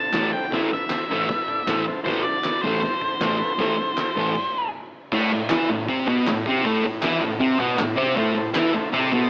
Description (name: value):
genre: garage rock duo or trio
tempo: 157 BPM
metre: 4/4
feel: straight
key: A minor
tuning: A4 = 440 Hz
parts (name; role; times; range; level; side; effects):
- octave-fuzz lead guitar; melody; 0.0-4.7 s; C5 to A5; -24 LUFS; equal; distortion, cassette tape
- combo organ; sustained chords; 0.0-4.3, 8.2-9.3 s; E4 to D5; -30 LUFS; equal; cassette tape
- fuzz guitar; riff; 0.1-9.3 s; A2 to E4; -21 LUFS; equal; distortion, cassette tape
- oversized low-tuned drum kit; drums; 0.1-9.2 s; crash cymbal, hi-hat, kick drum, snare drum; -28 LUFS; equal; cassette tape
- group handclap; percussion; 0.1-8.6 s; none; -29 LUFS; equal; none
room: light reverb, small room ambience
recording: home recording on cassette, AM radio sound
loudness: -20 LUFS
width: side -26 dB against mid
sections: 0.0-5.1 A section; 5.1-9.3 B section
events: stop 4.4-5.1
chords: 0.0 Am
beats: 0.14 | 0.53 0.91 1.29 1.68 | 2.06 2.44 2.83 3.21 | 3.59 3.98 4.36 4.74 | 5.12 5.50 5.88 6.27 | 6.65 7.03 7.41 7.79 | 8.18 8.56 8.94